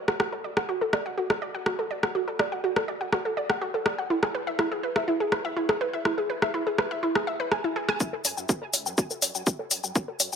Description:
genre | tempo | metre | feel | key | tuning
melodic techno | 123 BPM | 4/4 | straight | F# minor | A4 = 440 Hz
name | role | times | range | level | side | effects
analog pluck | arpeggios | 0.0-10.4 s | E4 to G#5 | -28 LUFS | right 1 dB | chorus, sidechain pumping, dub echo
techno drum kit | drums | 0.1-10.4 s | hi-hat, rim click, shaker | -27 LUFS | left 1 dB | overdrive, high-pass filter on snare, high-pass filter on perc, high-pass filter on hats
dark detuned saw bass | bass | 8.0-10.4 s | C#2 to F#2 | -46 LUFS | equal | sidechain pumping, high-pass filter
electronic kick drum | drums | 8.0-10.1 s | none | -26 LUFS | equal | overdrive, high-pass filter on kick
room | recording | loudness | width
moderate digital room reverb, RT60 1.2 s | none | -25 LUFS | side -7 dB against mid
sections
0.0-8.0 A section; 8.0-10.4 B section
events
filter sweep on synth arpeggio sound 0.0-8.0, 8.0-10.4; build-up 8.0-10.4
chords
0.2 D; 4.1 E; 8.0 F#m

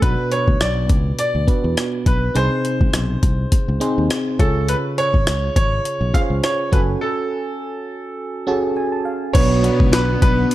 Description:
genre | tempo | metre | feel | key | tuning
1980s-style pop | 103 BPM | 4/4 | swing 55% on 16ths | F# harmonic minor | A4 = 438 Hz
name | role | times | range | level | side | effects
bright baby grand piano | melody | 0.0-10.5 s | A4 to E#5 | -23 LUFS | right 1 dB | digital delay
FM electric piano | accompaniment | 0.0-10.5 s | B2 to A5 | -22 LUFS | right 1 dB | chorus
fretless electric bass | bass | 0.0-10.4 s | F#1 to E2 | -21 LUFS | equal | none
jungle sampler-style drum kit | drums | 0.0-10.5 s | crash cymbal, hi-hat, kick drum, rim click, snare drum, tambourine | -18 LUFS | equal | none
overdriven electric guitar | accompaniment | 9.3-10.5 s | B2 to B3 | -32 LUFS | left 5 dB | ensemble chorus
chorused pulse-width pad | sustained chords | 9.3-10.5 s | B3 to F#4 | -23 LUFS | left 3 dB | none
room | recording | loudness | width
light reverb | dark, warm production | -16 LUFS | side -15 dB against mid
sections
0.0-9.3 A section; 9.3-10.5 B section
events
break 7.0-9.3; FM electric piano fill 8.2-9.3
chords
0.0 Bm; 2.4 G#; 4.4 C#; 6.7 F#madd9; 9.3 Bm

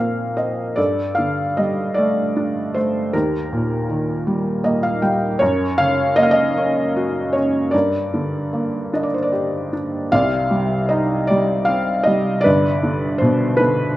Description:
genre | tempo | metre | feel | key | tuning
classical, lyrical solo piano | 51 BPM (dotted quarters) | 6/8 | rubato | G minor | A4 = 438 Hz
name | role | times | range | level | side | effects
felt-muted upright piano | solo | 0.0-14.0 s | G1 to G5 | -17 LUFS | equal | none
room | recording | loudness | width
light reverb | close, detailed microphones | -17 LUFS | side -15 dB against mid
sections
0.0-10.1 A section; 10.1-14.0 B section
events
felt piano fill 0.0-0.8, 4.3-5.4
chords
0.0 Bbsus2; 0.8 Gsus2; 3.1 Eb; 5.4 F#; 7.7 Gm; 10.1 Cmadd9; 12.5 G

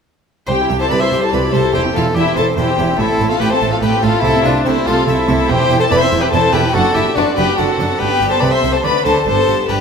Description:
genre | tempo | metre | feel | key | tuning
classical, baroque-style concerto movement with solo episodes | 143 BPM | 3/4 | straight | C major | A4 = 440 Hz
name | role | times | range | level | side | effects
rich chamber violin section | melody | 0.5-9.8 s | C5 to C6 | -20 LUFS | left 5 dB | none
warm violin | melody | 0.5-9.8 s | E4 to E5 | -19 LUFS | left 2 dB | none
warm chamber violin section | second line | 0.5-9.8 s | C4 to C5 | -18 LUFS | left 1 dB | none
harpsichord | accompaniment | 0.5-9.8 s | C2 to D5 | -23 LUFS | left 2 dB | none
warm chamber viola section | accompaniment | 0.5-9.8 s | A3 to G4 | -23 LUFS | right 2 dB | none
rich chamber double bass section | bass | 0.5-9.8 s | E1 to D2 | -22 LUFS | right 5 dB | none
warm chamber cello section | bass | 0.5-9.8 s | C2 to D3 | -21 LUFS | right 4 dB | none
room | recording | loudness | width
wet recital hall reverb, RT60 1.4 s | none | -12 LUFS | side -6 dB against mid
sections
0.5-9.8 A section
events
none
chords
0.5 C; 1.7 C/E; 3.0 Am; 4.2 Am/C; 5.5 C/E; 6.7 D7/F#; 8.0 G; 8.4 Am/C; 8.8 D5; 9.3 G

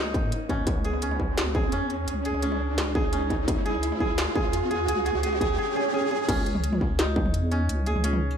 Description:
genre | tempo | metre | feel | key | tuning
half-time drum and bass | 171 BPM | 4/4 | half-time | C# minor | A4 = 444 Hz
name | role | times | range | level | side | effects
koto | arpeggios | 0.0-8.4 s | C#4 to G#4 | -29 LUFS | right 1 dB | digital delay
deep soft wobble bass | bass | 0.0-8.4 s | C#2 to G#2 | -29 LUFS | equal | chorus
riser and swell | sound effects | 0.0-6.3 s | none | -30 LUFS | right 1 dB | none
electronic kick drum | drums | 0.1-7.2 s | none | -27 LUFS | equal | distortion, small room ambience
industrial drum kit | drums | 0.1-8.4 s | crash cymbal, hi-hat, snare drum, tambourine, toms | -31 LUFS | equal | high-pass filter on hats, small room ambience, high-pass filter on toms, high-pass filter on snare, high-pass filter on cymbals, high-pass filter on perc
room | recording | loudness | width
light reverb, digital ambience | none | -23 LUFS | side -8 dB against mid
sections
0.0-6.3 A section; 6.3-8.4 B section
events
build-up 0.0-6.3; riser 0.0-6.3; swell 5.6-6.3; drop 6.3-8.4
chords
0.0 C#5; 6.3 C#m

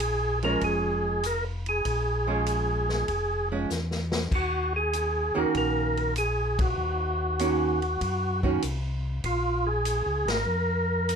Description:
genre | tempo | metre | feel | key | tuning
soul jazz organ trio | 97 BPM | 4/4 | swing 69% on 8ths | Bb minor | A4 = 442 Hz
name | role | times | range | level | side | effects
overdriven tonewheel organ | melody | 0.0-11.2 s | F4 to Bb4 | -27 LUFS | equal | chorus vibrato, stopped rotary speaker
mellow tonewheel organ | bass | 0.0-11.2 s | F1 to Gb2 | -30 LUFS | left 1 dB | slow rotary speaker
vintage drum kit | drums | 0.0-11.2 s | crash cymbal, hi-hat, kick drum, ride cymbal, snare drum | -34 LUFS | left 1 dB | none
archtop guitar, miked and amplified | accompaniment | 0.4-8.6 s | Eb3 to Gb4 | -28 LUFS | right 4 dB | none
room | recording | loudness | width
moderate studio ambience, RT60 0.5 s | none | -24 LUFS | side -6 dB against mid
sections
0.0-11.2 A section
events
drum fill 3.7-4.3; band accent 6.5-6.8, 10.2-10.5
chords
0.0 Bbm7; 4.3 Ebm7; 9.2 Bbm7

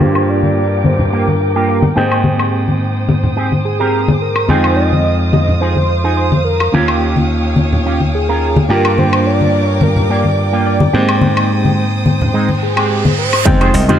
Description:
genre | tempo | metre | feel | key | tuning
nu-disco, nu disco | 107 BPM | 4/4 | swing 53% on 16ths | unclear | A4 = 439 Hz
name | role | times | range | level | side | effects
wide unison lead | melody | 0.0-14.0 s | Ab4 to Eb5 | -20 LUFS | equal | digital delay
reed electric piano | accompaniment | 0.0-14.0 s | Ab3 to G5 | -20 LUFS | right 1 dB | fast tremolo, sidechain pumping, tape echo
rich studio violin section | sustained chords | 0.0-14.0 s | Ab3 to Eb6 | -24 LUFS | left 1 dB | sidechain pumping
electric guitar with an envelope filter | riff | 0.0-14.0 s | Ab3 to C5 | -20 LUFS | right 4 dB | analog chorus, low-pass filter
glassy slap bass | bass | 0.0-14.0 s | C2 to Ab2 | -16 LUFS | equal | sidechain pumping
congas | percussion | 0.0-14.0 s | none | -17 LUFS | left 2 dB | none
electronic woodblock and hi-hat | drums | 0.2-14.0 s | none | -20 LUFS | left 2 dB | overdrive
reverse cymbal | sound effects | 12.6-13.5 s | none | -21 LUFS | right 6 dB | none
electronic kick drum | drums | 13.5-13.6 s | none | -14 LUFS | equal | overdrive
room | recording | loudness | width
light reverb | low-pass filter | -11 LUFS | side -9 dB against mid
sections
0.0-13.5 A section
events
filter sweep 0.0-13.5; reverse cymbal 12.6-13.5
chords
0.0 Gm7; 2.0 Abmaj7; 4.5 Fm7; 6.7 Eb9; 8.7 Gm7; 10.9 Abmaj7; 13.5 Fm7

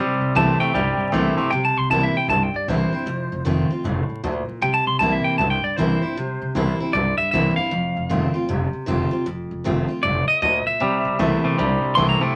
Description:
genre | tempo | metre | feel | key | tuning
rockabilly | 155 BPM | 4/4 | swing 63% on 8ths | C mixolydian | A4 = 440 Hz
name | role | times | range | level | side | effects
picked steel-string acoustic guitar | accompaniment | 0.0-12.4 s | F2 to F4 | -26 LUFS | equal | none
twangy electric guitar | riff | 0.0-1.5, 10.8-12.3 s | C3 to A3 | -24 LUFS | equal | none
upright bass | bass | 0.0-12.2 s | F1 to D2 | -27 LUFS | equal | none
clean electric guitar | melody | 0.4-12.4 s | C5 to C6 | -24 LUFS | equal | none
room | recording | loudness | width
moderate studio ambience, RT60 0.5 s | vinyl crackle | -21 LUFS | mono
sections
0.0-1.5 A section; 1.5-12.4 A section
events
none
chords
0.0 C7; 3.1 F7; 4.6 C7; 7.7 F7; 10.8 C7

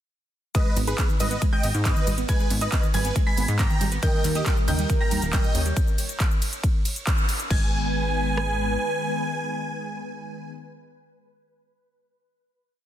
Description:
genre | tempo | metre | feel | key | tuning
uplifting trance | 138 BPM | 4/4 | straight | G# harmonic minor | A4 = 441 Hz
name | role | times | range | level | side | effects
supersaw chords | melody | 0.5-10.5 s | G4 to B5 | -30 LUFS | right 2 dB | sidechain pumping, digital delay
clear grand piano | second line | 0.5-10.5 s | B5 to B6 | -34 LUFS | right 1 dB | sidechain pumping, tape echo
analog pluck | arpeggios | 0.5-7.7 s | A#2 to D#4 | -32 LUFS | right 4 dB | chorus, sidechain pumping, tape echo
big-room dance drum kit | drums | 0.5-8.5 s | kick drum, rim click | -23 LUFS | equal | soft clipping on snare
big-room dance drum kit | drums | 0.5-7.6 s | crash cymbal, handclaps, hi-hat, ride cymbal, shaker | -30 LUFS | equal | none
plucky analog bass | bass | 0.8-8.8 s | D#1 to G#2 | -26 LUFS | equal | sidechain pumping
warm velvety synth lead | second line | 4.0-10.5 s | A#4 to C#5 | -34 LUFS | right 2 dB | chorus, dub echo
analog string pad | sustained chords | 4.0-10.5 s | D#3 to B4 | -31 LUFS | left 2 dB | ensemble chorus, sidechain pumping
room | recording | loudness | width
little or no reverb | dense, heavily limited modern master | -21 LUFS | side -11 dB against mid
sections
0.5-7.5 drop; 7.5-11.0 final chord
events
drop 0.5-7.5; band accent 7.1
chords
0.5 G#m; 4.0 D#; 5.8 N.C.; 7.5 G#m

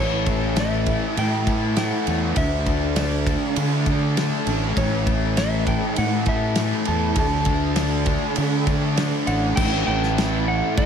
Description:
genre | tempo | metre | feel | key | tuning
rock, shoegaze and dream pop | 100 BPM | 4/4 | straight | A mixolydian | A4 = 435 Hz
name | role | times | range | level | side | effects
mellow electric guitar | melody | 0.0-10.9 s | C#5 to A5 | -29 LUFS | equal | tape echo
fuzz guitar | riff | 0.0-10.9 s | A2 to D4 | -23 LUFS | left 1 dB | distortion, wide subtle chorus
fuzz fingered electric bass | bass | 0.0-10.9 s | A1 to D3 | -24 LUFS | equal | overdrive
loose indie drum kit | drums | 0.3-10.9 s | crash cymbal, kick drum, ride cymbal, snare drum | -25 LUFS | equal | none
room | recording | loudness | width
moderate plate reverb, RT60 2.8 s | dreamy mix soaked in reverb | -19 LUFS | side -7 dB against mid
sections
0.0-9.6 A section; 9.6-10.9 B section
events
none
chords
0.0 A7; 2.4 Dsus2; 4.8 A; 7.2 D5; 9.6 A5

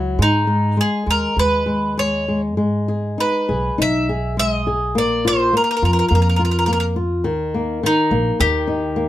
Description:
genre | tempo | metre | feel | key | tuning
fado-style ballad | 102 BPM | 4/4 | uneven beats, rubato | G# minor | A4 = 440 Hz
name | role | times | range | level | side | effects
bowl-back mandolin | melody | 0.0-9.1 s | D#4 to E5 | -19 LUFS | equal | none
flamenco guitar | accompaniment | 0.0-9.1 s | D#3 to G#4 | -21 LUFS | left 2 dB | none
upright bass | bass | 0.0-9.1 s | A#1 to G#2 | -21 LUFS | right 1 dB | none
room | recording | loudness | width
moderate studio reverb, RT60 0.5 s | none | -16 LUFS | side -13 dB against mid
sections
0.0-9.1 A section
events
none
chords
0.2 G#m; 2.6 Emaj7; 5.0 A#5; 7.2 D#5; 8.4 D#

